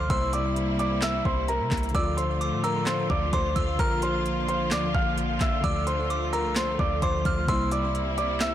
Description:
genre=hip hop, trap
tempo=130 BPM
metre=4/4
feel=half-time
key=D minor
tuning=A4 = 440 Hz
part: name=dark grand piano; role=melody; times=0.0-8.5 s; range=Bb4 to F6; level=-28 LUFS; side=right 1 dB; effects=digital delay
part: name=delicate synth tine bell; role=second line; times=0.0-8.4 s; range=D6 to F6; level=-34 LUFS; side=right 1 dB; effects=chorus, digital delay
part: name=mellow tine electric piano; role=accompaniment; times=0.0-8.5 s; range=C3 to F4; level=-31 LUFS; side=left 2 dB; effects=phaser
part: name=bright symphonic string section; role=sustained chords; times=0.0-8.5 s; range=C3 to F4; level=-32 LUFS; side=equal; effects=none
part: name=clean 808-style bass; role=bass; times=0.0-8.5 s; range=Bb1 to C3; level=-31 LUFS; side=equal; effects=none
part: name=trap drum kit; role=drums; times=0.1-8.5 s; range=handclaps, hi-hat, kick drum, snare drum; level=-29 LUFS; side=equal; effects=overdrive
room=little or no reverb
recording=blown-out, overdriven recording, overdrive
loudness=-23 LUFS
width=side -11 dB against mid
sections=0.0-8.5 A section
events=none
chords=0.1 C7; 1.9 Dm; 3.8 Bb; 5.6 Dm; 7.5 C7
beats=| 0.10 0.56 1.02 1.49 | 1.95 2.41 2.87 3.33 | 3.79 4.25 4.72 5.18 | 5.64 6.10 6.56 7.02 | 7.49 7.95 8.41

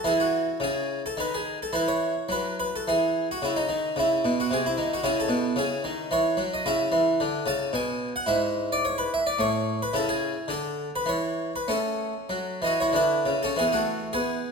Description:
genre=classical, baroque-style suite movement for harpsichord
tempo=94-113 BPM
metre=3/4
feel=rubato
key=A major from 6.6 s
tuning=A4 = 440 Hz
part: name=harpsichord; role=solo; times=0.0-14.5 s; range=G#2 to A5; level=-24 LUFS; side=equal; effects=none
room=moderate recital hall reverb, RT60 1.3 s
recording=minimal, uncompressed stereo recording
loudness=-24 LUFS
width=side -5 dB against mid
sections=0.1-13.5 A section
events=none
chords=0.1 C#madd11; 1.2 N.C.; 1.7 E69; 3.4 Badd9; 4.5 G#7b13/B#; 5.0 C#m; 7.7 N.C.; 8.3 E/G#; 9.4 N.C.; 9.9 C#m; 10.5 N.C.; 11.7 A; 13.5 E5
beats=| 0.05 0.63 1.20 | 1.74 2.29 2.85 | 3.40 3.95 4.49 | 5.02 5.56 6.10 | 6.64 7.19 7.72 | 8.26 8.80 9.36 | 9.93 10.48 11.06 | 11.67 12.29 12.91 | 13.54 14.11

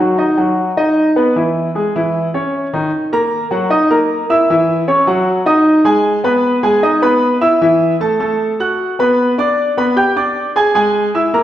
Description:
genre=jazz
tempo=153 BPM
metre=4/4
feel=straight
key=unclear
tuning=A4 = 439 Hz
part: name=clear concert grand piano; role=solo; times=0.0-11.4 s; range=D#3 to G#6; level=-12 LUFS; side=equal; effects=none
room=wet recital hall reverb, RT60 1.5 s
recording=recorded in a church or concert hall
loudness=-12 LUFS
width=side -12 dB against mid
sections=0.0-2.9 A section; 2.9-11.4 B section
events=none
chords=0.0 D#m; 1.4 E; 2.1 C#madd9; 2.9 F#7; 4.5 F#5; 5.3 D#madd11/F#; 6.1 Emaj7; 7.6 A5; 8.4 F#madd11/A; 9.2 G; 10.7 G#sus2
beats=0.19 0.58 0.97 | 1.36 1.75 2.14 2.53 | 2.92 3.31 3.71 4.10 | 4.49 4.88 5.27 5.66 | 6.05 6.44 6.83 7.23 | 7.62 8.01 8.40 8.79 | 9.18 9.57 9.97 10.36 | 10.75 11.14

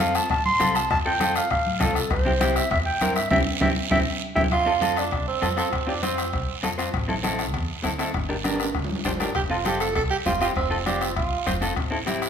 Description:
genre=latin, cumbia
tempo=199 BPM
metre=4/4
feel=straight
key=F major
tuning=A4 = 440 Hz
part: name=mellow clarinet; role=melody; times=0.0-4.4 s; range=A4 to C6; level=-24 LUFS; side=equal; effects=none
part: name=electric guitar through a small old amp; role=accompaniment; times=0.0-12.3 s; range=C4 to C5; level=-27 LUFS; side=left 1 dB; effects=none
part: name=upright bass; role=bass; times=0.0-12.3 s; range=F1 to A2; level=-31 LUFS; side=equal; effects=none
part: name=bombo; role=percussion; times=0.0-12.3 s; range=none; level=-29 LUFS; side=left 3 dB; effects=none
part: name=congas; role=percussion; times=0.0-12.2 s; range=none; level=-32 LUFS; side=right 1 dB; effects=none
part: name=guiro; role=percussion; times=0.1-12.3 s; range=none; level=-34 LUFS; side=right 7 dB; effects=none
part: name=cowbell and timbales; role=percussion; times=0.3-12.3 s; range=none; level=-35 LUFS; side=right 3 dB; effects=none
part: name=breathy tenor saxophone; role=second line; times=4.5-6.6, 9.4-11.6 s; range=C4 to A4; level=-25 LUFS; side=right 5 dB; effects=none
room=wet large studio reverb, RT60 1.4 s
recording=minimal, uncompressed stereo recording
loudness=-21 LUFS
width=side -8 dB against mid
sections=0.0-4.5 A section; 4.5-12.3 B section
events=band accent 3.3-4.5; drum fill 3.8-4.5, 8.4-9.4; tenor saxophone solo 4.5-12.3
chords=0.0 F; 2.1 C; 4.5 F; 6.9 Am; 8.1 Gm; 9.4 F; 11.8 Am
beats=0.00 0.30 0.61 | 0.91 1.21 1.51 1.81 | 2.11 2.41 2.71 3.01 | 3.31 3.61 3.91 4.22 | 4.52 4.82 5.12 5.42 | 5.72 6.03 6.33 6.63 | 6.93 7.24 7.54 7.84 | 8.14 8.45 8.75 9.05 | 9.35 9.66 9.96 10.26 | 10.56 10.86 11.17 11.47 | 11.77 12.07

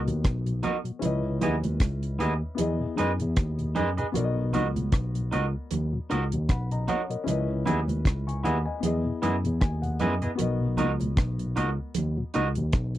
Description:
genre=lovers rock reggae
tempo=77 BPM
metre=4/4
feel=swing 56% on 16ths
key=B major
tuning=A4 = 435 Hz
part: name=warm concert grand piano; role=accompaniment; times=0.0-13.0 s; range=B3 to C#6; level=-34 LUFS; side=left 5 dB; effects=none
part: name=barky tine electric piano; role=bass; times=0.0-13.0 s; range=B1 to F#2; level=-28 LUFS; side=equal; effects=none
part: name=mellow tonewheel organ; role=accompaniment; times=0.1-13.0 s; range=E2 to D#4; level=-32 LUFS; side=left 2 dB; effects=chorus vibrato, slow rotary speaker
part: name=deep reggae drum kit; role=drums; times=0.1-13.0 s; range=hi-hat, kick drum, rim click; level=-26 LUFS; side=equal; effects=none
part: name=twangy electric guitar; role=stabs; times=0.6-12.5 s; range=B3 to D#5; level=-27 LUFS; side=right 3 dB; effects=none
part: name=congas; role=percussion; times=0.6-12.2 s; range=none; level=-34 LUFS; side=right 6 dB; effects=none
room=little or no reverb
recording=dry, close 1970s-style studio recording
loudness=-24 LUFS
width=side -14 dB against mid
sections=0.0-13.0 A section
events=grand piano fill 9.2-10.4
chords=0.0 Bmaj7; 1.0 C#m9; 2.6 Emaj7; 4.1 Bmaj7; 7.3 C#m9; 8.8 Emaj7; 10.4 Bmaj7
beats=0.24 | 1.02 1.80 2.58 3.37 | 4.15 4.93 5.71 6.49 | 7.27 8.05 8.83 9.61 | 10.39 11.17 11.95 12.73

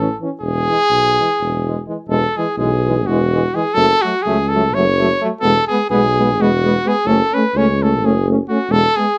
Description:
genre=balkan folk, Balkan brass band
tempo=253 BPM (eighths)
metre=7/8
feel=straight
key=E major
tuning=A4 = 440 Hz
part: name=warm cornet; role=melody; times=0.0-9.2 s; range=F#4 to C#5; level=-19 LUFS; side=equal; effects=none
part: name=clear French horn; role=accompaniment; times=0.0-9.1 s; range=G#3 to C#4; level=-26 LUFS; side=equal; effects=none
part: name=dark euphonium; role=accompaniment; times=0.0-9.1 s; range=E3 to A3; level=-23 LUFS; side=equal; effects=none
part: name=mellow tuba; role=bass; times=0.0-8.8 s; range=E1 to C#2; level=-21 LUFS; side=equal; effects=none
room=moderate small room reverb, RT60 0.5 s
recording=none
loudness=-16 LUFS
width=mono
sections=0.0-2.1 A section; 2.1-9.2 B section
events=speeding up 0.0-9.2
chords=0.4 E; 3.8 F#m; 5.4 E; 7.1 F#m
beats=0.16 | 0.41 0.65 0.89 1.13 1.37 1.61 1.84 | 2.08 2.32 2.56 2.80 3.04 3.28 3.52 | 3.75 3.99 4.23 4.46 4.70 4.94 5.17 | 5.41 5.65 5.88 6.12 6.35 6.59 6.82 | 7.06 7.29 7.53 7.76 7.99 8.23 8.46 | 8.69 8.93 9.16

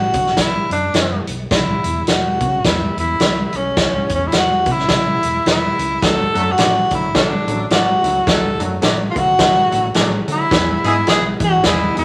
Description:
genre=uptempo 1960s-style soul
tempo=106 BPM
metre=4/4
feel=swing 59% on 8ths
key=unclear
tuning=A4 = 440 Hz
part: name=breathy tenor saxophone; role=melody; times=0.0-12.0 s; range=C#4 to A4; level=-20 LUFS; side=equal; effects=none
part: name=hollow-body short-scale fingered electric bass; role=bass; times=0.0-12.0 s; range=E1 to E3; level=-28 LUFS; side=equal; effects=none
part: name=swinging big-band drum kit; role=drums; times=0.1-12.0 s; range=hi-hat, kick drum, snare drum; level=-20 LUFS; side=equal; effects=none
part: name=clear upright piano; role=accompaniment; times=6.0-12.0 s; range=E3 to G#4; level=-26 LUFS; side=equal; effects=none
part: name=warm horn section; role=second line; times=6.3-12.0 s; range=E3 to A4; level=-26 LUFS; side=equal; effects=none
part: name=electric guitar through a small old amp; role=stabs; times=6.6-11.2 s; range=F#4 to E5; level=-29 LUFS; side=equal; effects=none
room=wet studio reverb, RT60 0.7 s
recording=vinyl crackle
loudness=-16 LUFS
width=mono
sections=0.0-12.0 A section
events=none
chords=0.0 D; 1.5 C#madd11/E; 6.0 D; 10.5 E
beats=0.38 0.94 | 1.51 2.07 2.64 3.20 | 3.77 4.33 4.89 5.46 | 6.02 6.58 7.14 7.71 | 8.27 8.83 9.40 9.96 | 10.52 11.08 11.65

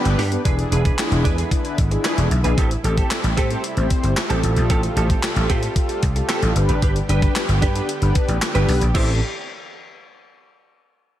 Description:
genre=dance-pop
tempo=113 BPM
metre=4/4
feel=straight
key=A minor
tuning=A4 = 440 Hz
part: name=mellow synth brass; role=accompaniment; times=0.0-9.2 s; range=B3 to C5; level=-26 LUFS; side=left 2 dB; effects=chorus, sidechain pumping
part: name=supersaw pad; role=sustained chords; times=0.0-9.2 s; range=C3 to G4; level=-30 LUFS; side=right 1 dB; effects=sidechain pumping
part: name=direct-recorded clean electric guitar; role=riff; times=0.1-9.1 s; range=C4 to C5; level=-28 LUFS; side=right 6 dB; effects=ensemble chorus
part: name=vintage slap bass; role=bass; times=0.1-9.2 s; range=E1 to A2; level=-19 LUFS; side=equal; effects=sidechain pumping
part: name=gated 80s digital drum machine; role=drums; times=0.1-9.1 s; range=crash cymbal, handclaps, hi-hat, kick drum, snare drum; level=-22 LUFS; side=equal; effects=gated reverb, gated reverb snare
room=little or no reverb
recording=none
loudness=-17 LUFS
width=side -12 dB against mid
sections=0.5-8.9 A section; 8.9-11.1 B section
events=break 0.0-0.5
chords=0.5 E7; 2.6 Am7; 4.4 Fadd9/A; 6.6 G; 8.9 Am7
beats=| 0.45 0.98 1.52 2.05 | 2.58 3.11 3.64 4.17 | 4.70 5.23 5.76 6.29 | 6.83 7.36 7.89 8.42 | 8.95

